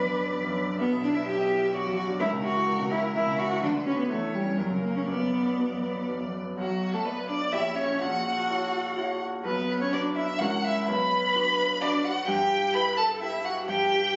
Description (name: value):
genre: quick classical-period movement for piano trio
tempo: 127 BPM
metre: 3/4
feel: rubato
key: B minor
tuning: A4 = 442 Hz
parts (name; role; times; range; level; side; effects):
- rich violin; melody; 0.0-14.2 s; F#4 to B5; -32 LUFS; equal; none
- warm cello; second line; 0.0-14.2 s; F#3 to B4; -30 LUFS; equal; none
- bright grand piano; accompaniment; 0.0-14.2 s; A#1 to D5; -34 LUFS; equal; none
room: wet recital hall reverb, RT60 1.6 s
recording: recorded on a phone in the room, studio reverb, nothing above 7.7 kHz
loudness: -27 LUFS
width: mono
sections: 0.0-6.6 A section; 6.6-14.2 A section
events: none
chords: 0.0 Bm; 0.8 Em/B; 1.7 Bm; 2.2 F#7/C#; 3.6 Bm/D; 4.1 C#dim/E; 4.6 F#; 5.1 Bm; 7.5 A#dim7; 8.0 F#7/A#; 9.4 Bm; 10.4 A#dim/C#; 10.9 Bm; 12.3 Em/G